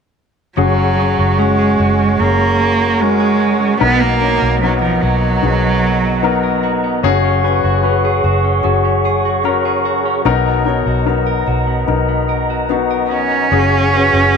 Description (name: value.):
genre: pop.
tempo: 74 BPM.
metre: 4/4.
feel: straight.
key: F# major.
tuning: A4 = 440 Hz.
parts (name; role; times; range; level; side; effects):
rich cello; melody; 0.6-6.6, 13.1-14.4 s; E#3 to C#4; -15 LUFS; right 4 dB; tape echo.
warm concert grand piano; accompaniment; 0.6-14.4 s; B2 to C#5; -18 LUFS; left 10 dB; none.
mellow tonewheel organ; sustained chords; 0.6-14.4 s; G#4 to C#6; -19 LUFS; right 2 dB; chorus vibrato, stopped rotary speaker.
direct-recorded clean electric guitar; arpeggios; 0.6-14.4 s; B2 to A#4; -24 LUFS; right 10 dB; harmonic tremolo.
vintage muted fingered electric bass; bass; 0.6-14.4 s; F#1 to B1; -18 LUFS; right 1 dB; none.
room: moderate echo chamber reverb, RT60 1.6 s.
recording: 1960s-style stereo with parts hard left and right.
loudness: -12 LUFS.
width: side -6 dB against mid.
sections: 0.6-14.4 A section.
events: none.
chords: 0.6 F#sus2; 3.8 Bmaj7; 7.0 F#sus2; 10.3 Bmaj7; 13.5 F#sus2.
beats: | 0.58 1.40 2.21 3.01 | 3.82 4.62 5.43 6.24 | 7.04 7.84 8.64 9.45 | 10.25 11.06 11.88 12.70 | 13.52 14.34.